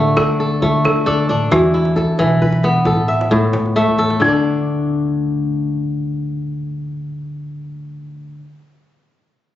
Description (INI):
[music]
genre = west african traditional, West African string and xylophone music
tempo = 89 BPM (dotted quarters)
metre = 12/8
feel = straight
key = unclear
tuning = A4 = 440 Hz
[part]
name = balafon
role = melody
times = 0.0-8.4 s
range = D4 to B4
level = -20 LUFS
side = equal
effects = none
[part]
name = kora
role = arpeggios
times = 0.0-8.4 s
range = A2 to E5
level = -16 LUFS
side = left 1 dB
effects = slapback echo
[part]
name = upright bass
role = bass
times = 0.0-8.4 s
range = A1 to E3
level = -24 LUFS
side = right 1 dB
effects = none
[part]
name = djembe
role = percussion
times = 0.2-4.4 s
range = none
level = -26 LUFS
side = right 1 dB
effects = none
[sound]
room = light reverb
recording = recorded on a phone in the room, club reverb, nothing above 7.8 kHz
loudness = -14 LUFS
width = side -12 dB against mid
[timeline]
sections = 0.0-4.2 A section; 4.2-6.9 B section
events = drum fill 3.8-4.2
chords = 0.0 D5; 1.5 E5; 2.9 A5; 4.2 D5